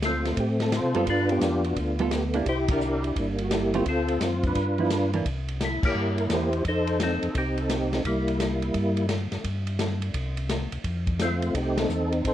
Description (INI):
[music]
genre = soul jazz organ trio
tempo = 172 BPM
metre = 4/4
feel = swing 65% on 8ths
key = C mixolydian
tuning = A4 = 436 Hz
[part]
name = percussive tonewheel organ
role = melody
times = 0.0-9.1, 11.2-12.3 s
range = G3 to C5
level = -25 LUFS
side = equal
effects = slow rotary speaker, chorus vibrato
[part]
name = mellow tonewheel organ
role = bass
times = 0.0-12.3 s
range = G1 to C3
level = -29 LUFS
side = equal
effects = slow rotary speaker
[part]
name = open jazz drum kit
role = drums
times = 0.0-12.3 s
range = crash cymbal, hi-hat, kick drum, ride cymbal, snare drum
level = -30 LUFS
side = left 1 dB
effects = none
[part]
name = hollow-body jazz guitar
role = accompaniment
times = 1.0-5.2 s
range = D3 to A4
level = -28 LUFS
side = right 5 dB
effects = none
[sound]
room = light reverb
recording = worn, warbling old tape, cassette tape, warbly pitch drift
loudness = -23 LUFS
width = side -12 dB against mid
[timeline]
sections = 0.0-5.3 A section; 5.3-12.3 A section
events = band accent 2.6, 5.8, 11.7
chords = 0.0 Dm7; 1.1 G9; 2.5 C9; 3.9 Dm7; 4.6 G6; 5.3 C7; 6.7 F7; 8.1 C7; 9.4 N.C.; 10.8 F9